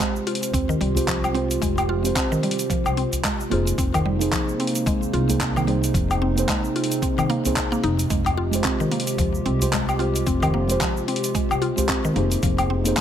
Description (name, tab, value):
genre	organic downtempo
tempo	111 BPM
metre	4/4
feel	swing 58% on 16ths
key	unclear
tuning	A4 = 440 Hz
part	muted felt-like synth keys	accompaniment	0.0-13.0 s	Ab3 to C5	-27 LUFS	right 2 dB	chorus, sidechain pumping, ping-pong delay
part	warbly tape-like pad	sustained chords	0.0-13.0 s	C3 to G4	-29 LUFS	right 1 dB	chorus, built-in reverb, sidechain pumping
part	mallet-like synth pluck	arpeggios	0.0-13.0 s	Eb3 to F4	-27 LUFS	equal	chorus, ping-pong delay
part	deep house drum kit	drums	0.0-13.0 s	cabasa, handclaps, hi-hat, woodblock	-27 LUFS	left 1 dB	none
part	electronic kick drum	drums	0.0-13.0 s	none	-27 LUFS	equal	none
part	upright bass	bass	0.5-12.9 s	F1 to Eb2	-25 LUFS	equal	none
part	udu	percussion	1.0-12.7 s	none	-30 LUFS	equal	none
room	light reverb, digital ambience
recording	none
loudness	-20 LUFS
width	side -9 dB against mid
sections	0.0-13.0 A section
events	none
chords	0.0 Abadd9/F